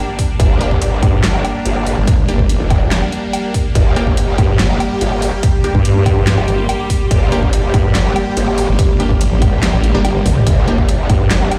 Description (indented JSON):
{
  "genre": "heavy wobble dubstep",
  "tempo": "143 BPM",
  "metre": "4/4",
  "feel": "half-time",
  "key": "G minor",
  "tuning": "A4 = 440 Hz",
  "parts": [
    { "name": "supersaw pad", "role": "sustained chords", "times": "0.0-11.6 s", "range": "G3 to G4", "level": "-25 LUFS", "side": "equal", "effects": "phaser, sidechain pumping" },
    { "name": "granular cloud pad", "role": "texture", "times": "0.0-11.6 s", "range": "G4 to C6", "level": "-28 LUFS", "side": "equal", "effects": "none" },
    { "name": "dubstep drum kit", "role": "drums", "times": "0.2-11.6 s", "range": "handclaps, hi-hat, snare drum, toms, woodblock", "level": "-23 LUFS", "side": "equal", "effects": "none" },
    { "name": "electronic kick drum", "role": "drums", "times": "0.2-11.2 s", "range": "none", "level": "-17 LUFS", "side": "equal", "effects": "none" },
    { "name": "growl bass", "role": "bass", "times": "0.4-11.5 s", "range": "F1 to G1", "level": "-19 LUFS", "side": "equal", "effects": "chorus, overdrive" },
    { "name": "orchestra-hit-like synth stab", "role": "stabs", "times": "0.6-11.6 s", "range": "Bb3 to G4", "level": "-26 LUFS", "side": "equal", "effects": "built-in reverb, dub echo" },
    { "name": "vowel-sweep wobble bass", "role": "bass", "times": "1.0-11.3 s", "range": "G1 to G2", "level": "-16 LUFS", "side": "equal", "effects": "chorus, overdrive" }
  ],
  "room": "little or no reverb",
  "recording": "played on a big sound system in a bare room, large studio reverb",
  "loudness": "-14 LUFS",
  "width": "mono",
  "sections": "0.0-11.6 A section",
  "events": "drum fill 10.2-10.5",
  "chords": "0.0 Gm"
}